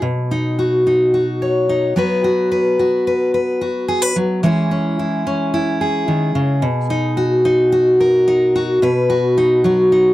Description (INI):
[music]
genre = folk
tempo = 109 BPM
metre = 4/4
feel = straight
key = B major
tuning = A4 = 441 Hz
[part]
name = fingerpicked steel-string acoustic guitar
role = solo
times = 0.0-10.1 s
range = B2 to C#5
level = -14 LUFS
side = equal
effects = none
[sound]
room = light reverb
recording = dry, close 1970s-style studio recording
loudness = -14 LUFS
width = side -15 dB against mid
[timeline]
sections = 0.0-8.8 A section; 8.8-10.1 B section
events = build-up 0.0-8.8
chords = 0.0 Badd9; 2.0 F#sus4; 4.4 C#m/E; 6.6 B6; 8.8 B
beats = | 0.03 0.58 1.13 1.68 | 2.23 2.78 3.33 3.88 | 4.43 4.98 5.53 6.08 | 6.62 7.17 7.72 8.27 | 8.81 9.36 9.91